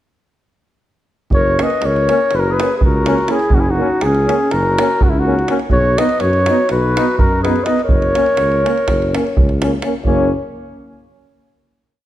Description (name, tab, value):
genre	balkan folk, Balkan brass band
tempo	247 BPM (eighths)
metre	9/8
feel	straight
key	F# mixolydian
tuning	A4 = 440 Hz
part	mellow flugelhorn	melody	1.3-10.3 s	E4 to D#5	-17 LUFS	equal	none
part	mellow tuba	bass	1.3-10.3 s	F#1 to F#2	-20 LUFS	equal	none
part	davul	percussion	1.3-10.3 s	none	-18 LUFS	right 1 dB	none
part	dark clarinet	second line	1.4-10.3 s	A#3 to B4	-23 LUFS	left 3 dB	none
part	bright trombone	accompaniment	1.6-10.3 s	C#4 to D#4	-24 LUFS	left 6 dB	none
part	mellow euphonium	accompaniment	1.6-10.3 s	A#3 to B3	-24 LUFS	right 6 dB	none
room	moderate recital hall reverb, RT60 1.8 s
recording	none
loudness	-13 LUFS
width	side -13 dB against mid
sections	1.3-10.1 A section; 10.1-12.1 final chord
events	none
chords	1.3 F#; 5.7 B; 7.9 F#